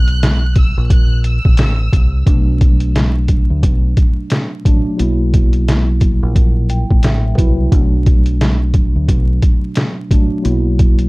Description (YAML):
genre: hip hop, boom-bap hip-hop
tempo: 88 BPM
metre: 4/4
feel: swing 61% on 16ths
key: B minor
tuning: A4 = 440 Hz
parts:
  - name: warm studio violin section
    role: melody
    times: 0.0-2.2 s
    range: E6 to F#6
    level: -26 LUFS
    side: right 1 dB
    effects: high-pass filter, low-pass filter, digital delay
  - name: deep dub fingered electric bass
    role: bass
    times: 0.0-11.1 s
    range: A1 to D2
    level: -15 LUFS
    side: equal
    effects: none
  - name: trip hop sampler-style drum kit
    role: drums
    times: 0.1-11.1 s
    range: hi-hat, kick drum, snare drum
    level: -13 LUFS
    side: equal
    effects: none
  - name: mellow tine electric piano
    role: accompaniment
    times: 2.2-11.1 s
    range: A#2 to G5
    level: -20 LUFS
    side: equal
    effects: medium stereo tremolo, cassette tape, high-pass filter, low-pass filter
room: light reverb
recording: dark, warm production, vinyl crackle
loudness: -11 LUFS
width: side -24 dB against mid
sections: 0.0-2.3 A section; 2.3-11.1 B section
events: break 0.0-2.3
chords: 0.0 F#7; 2.3 Bm7; 5.0 F#7; 7.7 Bm7; 10.4 F#7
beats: 0.22 0.90 1.58 | 2.27 2.95 3.63 4.31 | 4.99 5.67 6.36 7.04 | 7.72 8.40 9.08 9.77 | 10.45